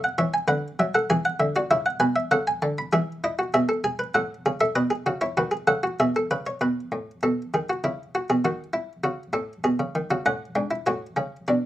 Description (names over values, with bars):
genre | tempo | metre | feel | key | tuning
classical, baroque-style 3-part fugue for harpsichord | 98 BPM | 3/4 | straight | unclear | A4 = 438 Hz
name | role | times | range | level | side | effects
buff-stop harpsichord | solo | 0.0-11.7 s | G#2 to B5 | -22 LUFS | equal | none
room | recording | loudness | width
light reverb | none | -22 LUFS | side -14 dB against mid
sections
0.0-6.6 A section; 6.6-11.7 B section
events
none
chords
0.5 Bm/D; 1.1 E7; 2.3 A/C#; 2.9 E; 4.1 F#m/A; 4.8 B7; 6.0 E/B; 6.6 B7/A; 7.8 E69; 8.4 D#m7b5; 9.6 G#m/B; 10.3 F#m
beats
0.49 | 1.10 1.71 2.32 | 2.93 3.54 4.14 | 4.75 5.37 5.98 | 6.60 7.21 7.82 | 8.43 9.04 9.65 | 10.26 10.87 11.48